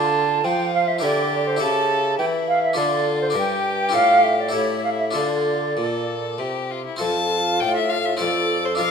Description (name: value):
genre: classical, baroque-style sonata movement with continuo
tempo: 96-104 BPM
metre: 3/4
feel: rubato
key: D minor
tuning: A4 = 438 Hz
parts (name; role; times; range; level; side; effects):
- clear violin; melody; 0.0-8.9 s; E4 to A5; -26 LUFS; left 7 dB; none
- concert flute; second line; 0.0-8.9 s; F4 to A5; -21 LUFS; right 3 dB; none
- harpsichord; accompaniment; 0.0-8.9 s; F2 to Bb4; -25 LUFS; left 3 dB; none
- mellow bassoon; bass; 0.0-8.9 s; F2 to F3; -26 LUFS; right 1 dB; none
room: wet recital hall reverb, RT60 1.2 s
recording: none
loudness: -18 LUFS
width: side -6 dB against mid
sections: 0.0-7.0 A section; 7.0-8.9 A section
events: none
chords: 0.0 Dm; 1.0 Em7b5/D; 1.6 A7/C#; 2.8 Dm; 3.4 Gm; 3.9 Dm/A; 4.5 A7; 5.2 Dm; 7.0 F